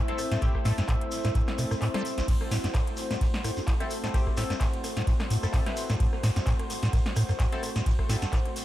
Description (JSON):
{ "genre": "acid house", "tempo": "129 BPM", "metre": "4/4", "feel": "swing 55% on 16ths", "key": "unclear", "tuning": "A4 = 441 Hz", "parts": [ { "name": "lush unison pad", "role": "sustained chords", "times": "0.0-8.6 s", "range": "A3 to E5", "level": "-36 LUFS", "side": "equal", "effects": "chorus, sidechain pumping" }, { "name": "liquid acid bass", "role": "riff", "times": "0.0-8.4 s", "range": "A1 to G3", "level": "-29 LUFS", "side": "equal", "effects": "phaser, cassette tape, sidechain pumping, tape echo" }, { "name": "deep dark ambient pad", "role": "texture", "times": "0.0-8.6 s", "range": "E4 to C6", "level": "-38 LUFS", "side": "left 1 dB", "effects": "chorus, built-in reverb, sidechain pumping" }, { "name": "band-passed chord stab", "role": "stabs", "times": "0.1-8.3 s", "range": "C4 to B4", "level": "-38 LUFS", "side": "left 2 dB", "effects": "chorus, phaser, tape echo" }, { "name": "electro analog drum machine", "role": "drums", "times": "0.1-8.6 s", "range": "crash cymbal, handclaps, hi-hat, ride cymbal, rim click, snare drum", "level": "-35 LUFS", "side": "equal", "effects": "tape echo" }, { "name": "shekere", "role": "percussion", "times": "0.2-8.6 s", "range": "none", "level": "-41 LUFS", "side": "right 1 dB", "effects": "tape echo" }, { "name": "electronic kick drum", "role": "drums", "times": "0.4-8.4 s", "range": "none", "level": "-27 LUFS", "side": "equal", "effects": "overdrive" } ], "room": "light reverb, digital ambience", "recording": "echo-heavy mix", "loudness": "-25 LUFS", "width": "side -14 dB against mid", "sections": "0.0-8.6 A section", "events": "kick drops out 1.8-2.3", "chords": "0.0 Am", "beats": "| 0.42 0.89 1.35 1.82 | 2.28 2.75 3.21 3.68 | 4.14 4.61 5.07 5.54 | 6.00 6.47 6.93 7.40 | 7.86 8.33" }